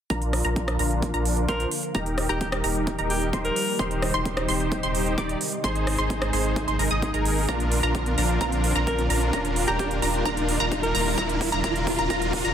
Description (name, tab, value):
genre	EDM, festival progressive house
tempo	130 BPM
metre	4/4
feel	straight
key	unclear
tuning	A4 = 440 Hz
part	lush unison pad	sustained chords	0.4-12.5 s	C3 to G4	-32 LUFS	equal	chorus, phaser, sidechain pumping
part	wide unison pluck	arpeggios	0.1-12.5 s	Bb5 to Eb6	-30 LUFS	equal	phaser, vintage 12-bit sampler grit, sidechain pumping, dub echo
part	dense compressed supersaw	riff	0.1-12.5 s	D4 to Eb5	-28 LUFS	equal	sidechain pumping, low-pass filter, dub echo
part	saturated sub bass	bass	0.1-12.5 s	Eb1 to Bb1	-28 LUFS	equal	tube saturation, sidechain pumping
part	big-room dance drum kit	drums	0.1-12.5 s	hi-hat, rim click	-31 LUFS	right 2 dB	small room ambience
part	electronic kick drum	drums	0.1-12.4 s	none	-30 LUFS	equal	overdrive, high-pass filter on kick, small room ambience
part	riser	sound effects	1.7-12.5 s	none	-33 LUFS	equal	none
part	clear alto saxophone	melody	1.5-3.8, 8.9-11.2 s	G4 to Bb4	-32 LUFS	left 1 dB	dub echo
room	moderate digital room reverb, RT60 1.2 s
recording	dense, heavily limited modern master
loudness	-22 LUFS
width	side -9 dB against mid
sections	0.1-12.5 A section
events	build-up 0.1-12.5; filter sweep on supersaw synth 0.1-12.5; riser 1.7-12.5; drum fill 7.5-12.5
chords	0.1 Bb; 1.9 Eb; 3.8 Cm/Eb; 5.6 Ab; 7.5 Bb; 9.3 Eb; 11.2 Cm/Eb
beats	| 0.10 0.56 1.02 1.49 | 1.95 2.41 2.87 3.33 | 3.79 4.25 4.72 5.18 | 5.64 6.10 6.56 7.03 | 7.49 7.95 8.41 8.87 | 9.33 9.79 10.26 10.72 | 11.18 11.64 12.10